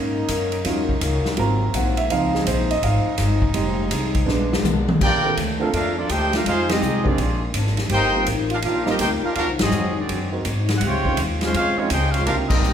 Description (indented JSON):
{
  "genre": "jazz, big band swing",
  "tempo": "165 BPM",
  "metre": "4/4",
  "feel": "swing 65% on 8ths",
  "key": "Bb major from 5.0 s",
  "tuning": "A4 = 440 Hz",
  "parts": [
    { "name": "picked steel-string acoustic guitar", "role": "accompaniment", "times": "0.0-12.7 s", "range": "Ab2 to Ab4", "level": "-29 LUFS", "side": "left 7 dB", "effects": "none" },
    { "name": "warm baby grand piano", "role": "accompaniment", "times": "0.0-12.5 s", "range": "F3 to Bb5", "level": "-26 LUFS", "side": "right 4 dB", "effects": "none" },
    { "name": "brilliant trombone section", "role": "sustained chords", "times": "0.0-5.0 s", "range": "Cb3 to F4", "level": "-31 LUFS", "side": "equal", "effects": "none" },
    { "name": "upright bass", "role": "bass", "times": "0.0-12.7 s", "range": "F1 to Ab2", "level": "-24 LUFS", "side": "equal", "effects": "none" },
    { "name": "swinging big-band drum kit", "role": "drums", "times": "0.3-12.7 s", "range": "crash cymbal, hi-hat, kick drum, ride cymbal, snare drum, toms", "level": "-24 LUFS", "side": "left 1 dB", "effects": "none" },
    { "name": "mellow trumpet section", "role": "melody", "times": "5.0-12.7 s", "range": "Ab3 to G5", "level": "-23 LUFS", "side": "equal", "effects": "none" },
    { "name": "clear trombone section", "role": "second line", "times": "5.0-12.7 s", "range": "C3 to G4", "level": "-26 LUFS", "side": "right 2 dB", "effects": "none" }
  ],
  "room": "wet recital hall reverb, RT60 1.6 s",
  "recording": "recorded in a church or concert hall",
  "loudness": "-18 LUFS",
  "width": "side -8 dB against mid",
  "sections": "0.0-5.0 A section; 5.0-12.7 B section",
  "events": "grand piano solo 0.0-5.0; drum fill 4.3-5.0; band accent 6.6, 9.5, 12.4",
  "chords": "0.0 Bmaj9; 0.7 Ebm7; 1.4 Ab13; 2.1 Dbmaj9; 3.6 Fm7; 4.3 Bb7b9; 5.0 Bbmaj7; 6.5 Fm9; 7.2 Bb9; 7.9 Eb6; 9.4 Ab7; 10.8 Dbmaj7",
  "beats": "0.29 | 0.65 1.01 1.38 1.74 | 2.10 2.46 2.83 3.19 | 3.55 3.92 4.28 4.64 | 5.00 5.37 5.73 6.09 | 6.46 6.82 7.18 7.55 | 7.91 8.27 8.63 9.00 | 9.36 9.72 10.09 10.45 | 10.81 11.18 11.54 11.90 | 12.26 12.62"
}